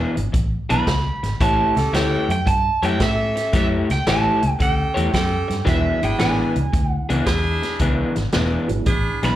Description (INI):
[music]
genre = electric blues shuffle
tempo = 113 BPM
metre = 4/4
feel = swing 68% on 8ths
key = E mixolydian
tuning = A4 = 435 Hz
[part]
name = electric guitar through a small old amp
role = riff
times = 0.0-9.4 s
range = E3 to C#5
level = -23 LUFS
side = left 3 dB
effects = slapback echo
[part]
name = vintage muted fingered electric bass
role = bass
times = 0.0-9.3 s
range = E1 to A2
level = -22 LUFS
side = equal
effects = none
[part]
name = vintage drum kit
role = drums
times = 0.2-9.3 s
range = hi-hat, kick drum, snare drum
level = -24 LUFS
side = equal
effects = none
[part]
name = overdriven semi-hollow guitar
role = melody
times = 0.7-9.4 s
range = E5 to B5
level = -22 LUFS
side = right 3 dB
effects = slapback echo
[part]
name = edgy saxophone section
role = stabs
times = 1.8-9.3 s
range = C#4 to A4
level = -26 LUFS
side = right 2 dB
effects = slapback echo
[part]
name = dark upright piano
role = accompaniment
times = 5.7-8.8 s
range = F#3 to E4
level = -29 LUFS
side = right 6 dB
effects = slapback echo
[sound]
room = little or no reverb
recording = live gig heard through the venue's PA, club reverb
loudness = -17 LUFS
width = side -13 dB against mid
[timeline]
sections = 0.0-9.4 A section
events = none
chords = 0.0 E7; 1.4 A7; 5.7 E7